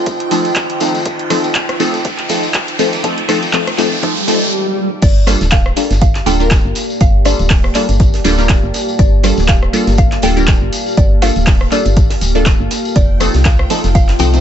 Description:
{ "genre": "deep house", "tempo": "121 BPM", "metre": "4/4", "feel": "swing 56% on 16ths", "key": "G minor", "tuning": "A4 = 435 Hz", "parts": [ { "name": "deep dark ambient pad", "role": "sustained chords", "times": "0.0-14.4 s", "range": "A3 to D6", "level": "-23 LUFS", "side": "right 1 dB", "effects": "chorus, built-in reverb, vintage 12-bit sampler grit, sidechain pumping" }, { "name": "woody FM bass", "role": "bass", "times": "0.0-14.4 s", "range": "D1 to F2", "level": "-15 LUFS", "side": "equal", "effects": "sidechain pumping, high-pass filter" }, { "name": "riser and swell", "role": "sound effects", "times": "0.1-5.0 s", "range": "none", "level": "-20 LUFS", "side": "right 1 dB", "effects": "none" }, { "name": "string machine, violins", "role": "texture", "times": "0.0-4.5, 13.0-14.4 s", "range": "G5", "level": "-32 LUFS", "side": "equal", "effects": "none" }, { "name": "warbly tape-like pad", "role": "texture", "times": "0.0-14.4 s", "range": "F4 to A5", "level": "-25 LUFS", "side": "equal", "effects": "chorus, built-in reverb, sidechain pumping" }, { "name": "electronic kick drum", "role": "drums", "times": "0.1-14.1 s", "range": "none", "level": "-12 LUFS", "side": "equal", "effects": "high-pass filter on kick, high-pass filter on room" }, { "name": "punchy analog drum machine", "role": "drums", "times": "0.1-14.4 s", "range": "crash cymbal, handclaps, hi-hat, rim click", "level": "-20 LUFS", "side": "right 1 dB", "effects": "none" }, { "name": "tambourine", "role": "percussion", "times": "0.1-14.4 s", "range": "none", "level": "-26 LUFS", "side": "left 5 dB", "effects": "none" }, { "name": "filtered dub chord stab", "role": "stabs", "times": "0.3-14.4 s", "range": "F3 to C5", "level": "-17 LUFS", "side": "left 1 dB", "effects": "phaser, cassette tape, sidechain pumping, ping-pong delay" }, { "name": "mallet-like synth pluck", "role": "melody", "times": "5.0-14.4 s", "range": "D5 to G5", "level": "-23 LUFS", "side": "equal", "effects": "chorus, phaser, dub echo" }, { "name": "crisp fusion drum kit", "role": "drums", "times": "5.0-14.3 s", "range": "hi-hat, snare drum", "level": "-29 LUFS", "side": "right 2 dB", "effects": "none" } ], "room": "light reverb", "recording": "nothing above 7.9 kHz", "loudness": "-11 LUFS", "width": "side -10 dB against mid", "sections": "0.0-5.0 A section; 5.0-14.4 B section", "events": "build-up 0.0-5.0; riser 0.1-4.5; swell 4.0-5.0; stop 4.5-5.0; drop 5.0-14.4", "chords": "0.0 F7; 5.0 Gm9; 12.7 F7" }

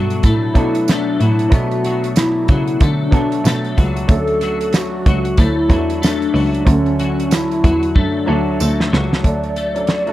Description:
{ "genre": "indie pop, bedroom pop", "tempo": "93 BPM", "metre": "4/4", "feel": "swing 60% on 16ths", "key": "D major", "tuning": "A4 = 440 Hz", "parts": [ { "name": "warbly nostalgic lead", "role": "melody", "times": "0.0-10.1 s", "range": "C#4 to D5", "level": "-20 LUFS", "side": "left 1 dB", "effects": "ensemble chorus, analog delay" }, { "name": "twelve-string electric guitar", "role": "accompaniment", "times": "0.0-10.1 s", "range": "B2 to D4", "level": "-23 LUFS", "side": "left 5 dB", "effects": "ensemble chorus, vibrato effect" }, { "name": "warm upright piano", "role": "accompaniment", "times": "0.0-10.1 s", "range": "D3 to C#5", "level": "-24 LUFS", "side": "right 3 dB", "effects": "cassette tape" }, { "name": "warm cello", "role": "bass", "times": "0.0-10.1 s", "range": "C#2 to D3", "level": "-19 LUFS", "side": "equal", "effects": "none" }, { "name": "damped 70s drum kit", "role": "drums", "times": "0.1-10.1 s", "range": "hi-hat, kick drum, snare drum", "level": "-14 LUFS", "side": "equal", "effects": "none" }, { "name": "tambourine", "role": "percussion", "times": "0.9-8.8 s", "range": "none", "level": "-30 LUFS", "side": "right 12 dB", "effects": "none" } ], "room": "light reverb, studio reverb", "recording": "dark, warm production", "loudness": "-13 LUFS", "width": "side -15 dB against mid", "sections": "0.0-9.2 A section", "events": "drum fill 8.0-9.2", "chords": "0.0 Bm7; 4.1 Dmaj7" }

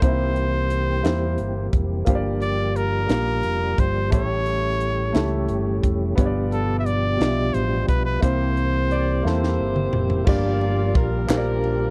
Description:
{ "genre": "slow gospel", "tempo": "58 BPM (dotted quarters)", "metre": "6/8", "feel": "straight", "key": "unclear", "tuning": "A4 = 440 Hz", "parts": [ { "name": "brilliant trumpet", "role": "melody", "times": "0.0-9.6 s", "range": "A4 to E5", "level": "-29 LUFS", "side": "equal", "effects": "none" }, { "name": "warm upright piano", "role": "accompaniment", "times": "0.0-11.9 s", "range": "G2 to F5", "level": "-30 LUFS", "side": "equal", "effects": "none" }, { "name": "mellow tonewheel organ", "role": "sustained chords", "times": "0.0-11.9 s", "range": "B2 to G4", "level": "-30 LUFS", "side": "equal", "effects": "slow rotary speaker, chorus vibrato" }, { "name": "fingered electric bass", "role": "bass", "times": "0.0-11.9 s", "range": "F1 to E2", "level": "-27 LUFS", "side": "equal", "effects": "none" }, { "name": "crisp fusion drum kit", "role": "drums", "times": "0.0-11.8 s", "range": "crash cymbal, hi-hat, kick drum, ride cymbal, snare drum, toms", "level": "-24 LUFS", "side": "equal", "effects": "none" }, { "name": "warm horn section", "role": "melody", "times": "8.9-11.9 s", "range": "D4 to D5", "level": "-30 LUFS", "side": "equal", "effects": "none" }, { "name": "group handclap", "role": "percussion", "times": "11.3-11.6 s", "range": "none", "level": "-36 LUFS", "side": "equal", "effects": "none" } ], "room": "light reverb", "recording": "dry, close 1970s-style studio recording", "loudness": "-22 LUFS", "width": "mono", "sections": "0.0-10.3 A section; 10.3-11.9 B section", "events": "drum fill 9.2-10.3", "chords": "0.0 C7; 2.1 Gm7; 4.1 A7; 6.2 G7; 8.2 C7; 10.3 Gm7" }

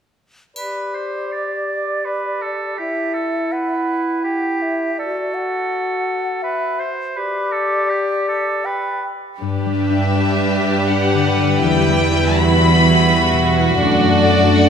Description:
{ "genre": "cinematic, emotional film score for orchestra", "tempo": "82 BPM", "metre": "3/4", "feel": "rubato", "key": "G major", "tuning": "A4 = 441 Hz", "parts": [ { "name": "mellow hollow concert flute", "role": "second line", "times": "0.5-9.1 s", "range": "D5 to G5", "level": "-25 LUFS", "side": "left 1 dB", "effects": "none" }, { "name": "clear oboe", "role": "second line", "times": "0.6-9.1 s", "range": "G4 to D5", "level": "-24 LUFS", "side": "right 2 dB", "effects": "none" }, { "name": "warm clarinet", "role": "second line", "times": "0.6-9.0 s", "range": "E4 to G4", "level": "-24 LUFS", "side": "left 1 dB", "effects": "none" }, { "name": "triangle", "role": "percussion", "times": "0.6-2.0 s", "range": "none", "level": "-36 LUFS", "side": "left 2 dB", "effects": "none" }, { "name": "rich studio violin section", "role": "second line", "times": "9.4-14.7 s", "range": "F#4 to D5", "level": "-19 LUFS", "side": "left 1 dB", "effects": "none" }, { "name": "warm chamber viola section", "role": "accompaniment", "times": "9.4-14.7 s", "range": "G3 to E4", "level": "-19 LUFS", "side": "right 2 dB", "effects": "none" }, { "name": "concert harp", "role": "arpeggios", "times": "9.4-14.7 s", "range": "E2 to D5", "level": "-20 LUFS", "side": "left 8 dB", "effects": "none" }, { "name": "dark studio cello section", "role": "bass", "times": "9.4-14.7 s", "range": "E2 to G2", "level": "-18 LUFS", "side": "right 3 dB", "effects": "none" }, { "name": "rich studio violin section", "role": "melody", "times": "9.8-14.7 s", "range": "D5 to B5", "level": "-20 LUFS", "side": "left 2 dB", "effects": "none" } ], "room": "wet concert hall reverb, RT60 2.5 s", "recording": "none", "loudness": "-16 LUFS", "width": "side -7 dB against mid", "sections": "0.6-9.4 A section; 9.4-14.7 B section", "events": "none", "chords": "0.6 G; 2.8 Emadd9; 5.0 D/F# (rootless); 7.1 G; 11.6 Emadd9; 13.8 D/F#" }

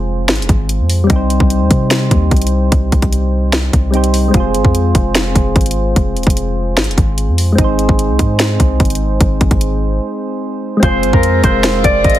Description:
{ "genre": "hip hop, trap", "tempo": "148 BPM", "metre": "4/4", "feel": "half-time", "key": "F minor", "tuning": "A4 = 440 Hz", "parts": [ { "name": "soft electric-piano-like synth keys", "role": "accompaniment", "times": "0.0-12.2 s", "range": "G3 to C5", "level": "-17 LUFS", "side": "equal", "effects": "chorus, low-pass filter" }, { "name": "warm 808-style bass", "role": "bass", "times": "0.0-12.2 s", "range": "Eb1 to C3", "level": "-15 LUFS", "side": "equal", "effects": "none" }, { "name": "trap drum kit", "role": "drums", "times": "0.3-12.2 s", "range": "hi-hat, kick drum, snare drum", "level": "-14 LUFS", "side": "equal", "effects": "overdrive" }, { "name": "Celtic harp", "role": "melody", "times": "10.8-12.2 s", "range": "Bb4 to Eb5", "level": "-14 LUFS", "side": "equal", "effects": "low-pass filter" }, { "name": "warm studio string section", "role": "sustained chords", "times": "10.8-12.2 s", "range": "Ab3 to F4", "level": "-22 LUFS", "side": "left 1 dB", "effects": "none" } ], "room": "little or no reverb", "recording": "heavily compressed radio sound, multiband compression", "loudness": "-11 LUFS", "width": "side -13 dB against mid", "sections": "0.0-10.8 A section; 10.8-12.2 B section", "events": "break 10.0-10.8", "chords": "0.0 Fm; 1.1 Cm; 4.3 Fm; 7.6 Ab; 10.8 Fm" }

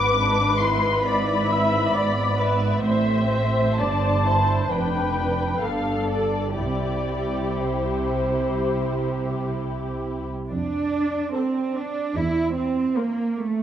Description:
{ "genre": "classical, slow romantic movement for string orchestra", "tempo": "60-74 BPM", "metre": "4/4", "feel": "rubato", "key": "C major, F major from 10.5 s", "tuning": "A4 = 439 Hz", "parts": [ { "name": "muted studio violin section", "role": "melody", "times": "0.0-13.6 s", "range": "C5 to D6", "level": "-26 LUFS", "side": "left 4 dB", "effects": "none" }, { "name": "muted studio violin section", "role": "second line", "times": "0.0-13.6 s", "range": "B3 to E5", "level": "-28 LUFS", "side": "left 2 dB", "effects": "none" }, { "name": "muted symphonic viola section", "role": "accompaniment", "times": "0.0-13.6 s", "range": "G4 to E5", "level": "-27 LUFS", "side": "equal", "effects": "none" }, { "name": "muted studio cello section", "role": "bass", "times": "0.0-13.6 s", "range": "F2 to E4", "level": "-25 LUFS", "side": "right 3 dB", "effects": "none" }, { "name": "muted studio double bass section", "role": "bass", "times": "0.0-12.8 s", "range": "F1 to F2", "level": "-29 LUFS", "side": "right 3 dB", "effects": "none" } ], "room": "moderate concert hall reverb, RT60 2.1 s", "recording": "none", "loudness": "-21 LUFS", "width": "side -10 dB against mid", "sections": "0.0-10.5 A section; 10.5-13.6 B section", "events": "none", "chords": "0.0 E7/G#; 2.8 Am; 4.7 Dm/F; 5.6 Gsus2; 6.6 C; 10.5 F; 12.2 C7/E" }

